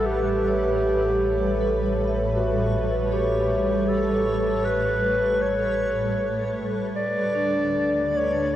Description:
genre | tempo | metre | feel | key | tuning
ambient | 78 BPM | 3/4 | straight | unclear | A4 = 440 Hz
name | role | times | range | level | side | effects
mellow clarinet | melody | 0.0-8.6 s | F#4 to D5 | -24 LUFS | equal | shimmer reverb, ping-pong delay
granular cloud pad | sustained chords | 0.0-8.6 s | A2 to F#5 | -26 LUFS | equal | built-in reverb, shimmer reverb
vibraphone with medium mallets | arpeggios | 0.0-8.6 s | D4 to E5 | -28 LUFS | left 1 dB | shimmer reverb, ping-pong delay
warm sub bass | bass | 0.0-8.6 s | A1 to D2 | -31 LUFS | equal | none
backwards swelling texture | texture | 0.0-8.6 s | B4 to C#6 | -43 LUFS | right 2 dB | built-in reverb, shimmer reverb
room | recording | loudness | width
wet huge ambient reverb, RT60 8.6 s | worn, warbling old tape, cassette tape, warbly pitch drift | -21 LUFS | side -12 dB against mid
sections
0.0-8.6 A section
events
fade-in on synth texture 0.0-8.6; fade-out on sub bass 0.0-8.6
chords
0.0 A9; 7.0 Dmaj7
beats
| 0.09 0.85 1.61 | 2.36 3.12 3.88 | 4.65 5.42 6.19 | 6.96 7.74 8.52

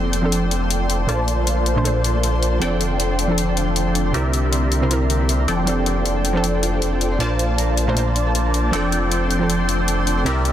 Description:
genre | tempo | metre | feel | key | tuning
future bass | 157 BPM | 4/4 | swing 55% on 16ths, half-time | F major | A4 = 436 Hz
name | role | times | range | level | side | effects
soft round pluck | accompaniment | 0.0-10.5 s | Bb2 to C5 | -25 LUFS | right 2 dB | chorus, digital delay
shimmering ambient pad | sustained chords | 0.0-10.5 s | D3 to A5 | -29 LUFS | left 1 dB | chorus, built-in reverb, phaser
supersaw stab | riff | 0.0-10.5 s | F3 to A5 | -22 LUFS | equal | phaser, low-pass filter, digital delay
saturated sub bass | bass | 0.0-10.5 s | F1 to C2 | -22 LUFS | equal | tube saturation
electronic hi-hat | drums | 0.1-10.5 s | none | -26 LUFS | left 4 dB | none
concert harp | arpeggios | 2.6-10.5 s | D4 to D5 | -29 LUFS | left 2 dB | digital delay
room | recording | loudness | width
light reverb | dense, heavily limited modern master | -17 LUFS | side -11 dB against mid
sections
0.0-10.5 A section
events
filter sweep on supersaw synth 0.0-10.5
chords
0.0 F6; 1.1 Bbmaj9; 2.6 F6; 4.1 C7; 5.5 F6; 7.2 Bbmaj9; 8.7 F6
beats
0.32 0.70 | 1.09 1.47 1.85 2.23 | 2.62 3.00 3.38 3.76 | 4.14 4.53 4.91 5.29 | 5.67 6.05 6.44 6.82 | 7.20 7.58 7.97 8.35 | 8.73 9.11 9.49 9.88 | 10.26

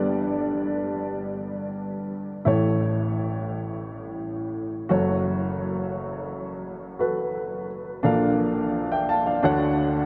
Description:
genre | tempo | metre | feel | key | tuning
pop | 86 BPM | 4/4 | straight | unclear | A4 = 440 Hz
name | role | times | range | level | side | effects
warm baby grand piano | solo | 0.0-10.1 s | F#1 to A5 | -26 LUFS | equal | analog delay
room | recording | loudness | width
wet huge ambient reverb, RT60 7.6 s | dreamy mix soaked in reverb | -26 LUFS | mono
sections
0.0-10.1 A section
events
none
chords
0.0 Gadd9; 2.5 A; 4.9 F#m; 8.0 Bbmaj7; 9.4 Dmaj7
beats
0.37 1.07 1.77 | 2.46 3.16 3.86 4.56 | 5.25 5.95 6.65 7.35 | 8.04 8.74 9.44

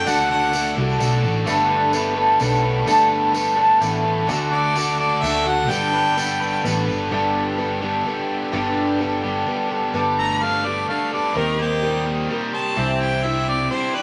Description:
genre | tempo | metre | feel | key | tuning
folk rock and heartland rock | 128 BPM | 3/4 | straight | G major | A4 = 440 Hz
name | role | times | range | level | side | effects
bright harmonica | melody | 0.0-0.7, 4.5-6.6, 10.2-14.0 s | G4 to Bb5 | -25 LUFS | equal | none
picked twelve-string acoustic guitar | accompaniment | 0.0-14.0 s | G2 to Bb4 | -23 LUFS | equal | none
rich chamber string section | sustained chords | 0.0-14.0 s | A4 to Eb6 | -38 LUFS | equal | none
biting overdriven guitar | riff | 0.0-14.0 s | G2 to D5 | -28 LUFS | equal | none
picked electric bass | bass | 0.0-13.7 s | G1 to Eb2 | -29 LUFS | equal | none
tambourine | percussion | 0.1-6.9 s | none | -35 LUFS | equal | none
room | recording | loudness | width
wet studio reverb, RT60 0.7 s | none | -20 LUFS | mono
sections
0.0-7.1 A section; 7.1-9.9 B section; 9.9-14.0 C section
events
harmonica solo 9.9-14.0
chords
0.0 D; 1.5 Gadd9; 4.3 D; 5.7 Gadd9; 11.4 Eb6; 12.8 Cadd9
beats
| 0.07 0.54 1.00 | 1.47 1.94 2.41 | 2.88 3.35 3.82 | 4.29 4.76 5.23 | 5.70 6.17 6.64 | 7.11 7.59 8.06 | 8.53 9.00 9.47 | 9.95 10.42 10.89 | 11.36 11.83 12.30 | 12.78 13.25 13.72

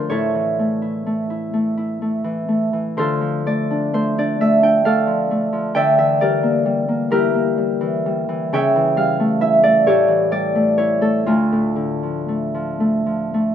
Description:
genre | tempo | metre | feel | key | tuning
classical, solo harp piece | 43 BPM (dotted quarters) | 6/8 | uneven beats, rubato | D minor | A4 = 440 Hz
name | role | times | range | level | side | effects
Celtic harp | solo | 0.0-13.5 s | D2 to G5 | -16 LUFS | equal | none
room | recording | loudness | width
moderate recital hall reverb, RT60 1.6 s | close, detailed microphones | -16 LUFS | side -9 dB against mid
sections
0.0-13.5 A section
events
none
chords
0.1 A; 3.0 Dm; 5.8 Em7b5/D; 8.5 A7/C#; 9.9 A7; 11.3 Dm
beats
| 0.10 1.54 | 2.98 4.40 | 5.77 7.11 | 8.53 9.86 | 11.28 12.82

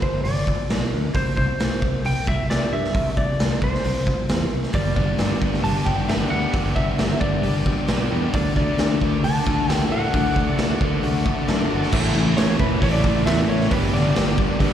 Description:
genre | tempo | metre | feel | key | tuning
classic rock | 134 BPM | 4/4 | straight | unclear | A4 = 440 Hz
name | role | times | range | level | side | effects
electric slide guitar | melody | 0.0-14.7 s | B4 to A5 | -27 LUFS | equal | plate reverb, slapback echo, analog delay
picked electric bass | bass | 0.0-14.7 s | E1 to A2 | -24 LUFS | equal | none
raw garage drum kit | drums | 0.0-14.7 s | crash cymbal, hi-hat, kick drum, snare drum | -23 LUFS | equal | none
bright tonewheel organ | sustained chords | 4.7-14.7 s | C#3 to E5 | -35 LUFS | left 1 dB | none
crunchy overdriven guitar | riff | 4.7-14.7 s | G2 to A4 | -26 LUFS | left 10 dB | none
sludgy distorted guitar | riff | 4.7-14.7 s | G2 to B4 | -26 LUFS | right 9 dB | overdrive, slapback echo
crunchy overdriven guitar | riff | 11.9-14.7 s | G2 to A3 | -28 LUFS | left 1 dB | spring reverb, slapback echo
room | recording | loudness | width
light reverb | live gig heard through the venue's PA, recital hall reverb | -18 LUFS | side -10 dB against mid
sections
0.0-11.9 A section; 11.9-14.7 B section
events
none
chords
0.0 G; 1.1 N.C.; 4.7 G; 8.3 D; 11.9 A; 13.7 G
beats
0.25 0.70 | 1.15 1.60 2.05 2.50 | 2.95 3.40 3.85 4.30 | 4.75 5.19 5.64 6.09 | 6.54 6.99 7.44 7.89 | 8.34 8.79 9.23 9.68 | 10.13 10.58 11.03 11.48 | 11.92 12.37 12.82 13.26 | 13.71 14.16 14.60

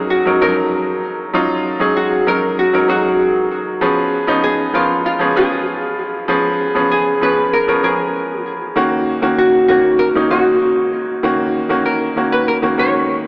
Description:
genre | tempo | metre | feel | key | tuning
pop | 97 BPM | 4/4 | straight | Eb minor | A4 = 440 Hz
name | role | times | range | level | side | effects
clear baby grand piano | accompaniment | 0.0-13.3 s | Eb3 to Bb4 | -15 LUFS | equal | none
hollow-body jazz guitar | melody | 0.1-13.3 s | F4 to Db5 | -17 LUFS | equal | lush chorus, tape echo
room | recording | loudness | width
wet plate reverb, RT60 3.6 s | dreamy mix soaked in reverb, AM radio sound | -13 LUFS | side -30 dB against mid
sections
0.0-13.3 A section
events
none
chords
0.0 Ebm7; 3.8 Db7; 8.8 Ebm7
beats
0.10 0.72 | 1.34 1.96 2.58 3.20 | 3.81 4.43 5.05 5.67 | 6.29 6.91 7.53 8.14 | 8.76 9.38 10.00 10.62 | 11.24 11.86 12.47 13.09

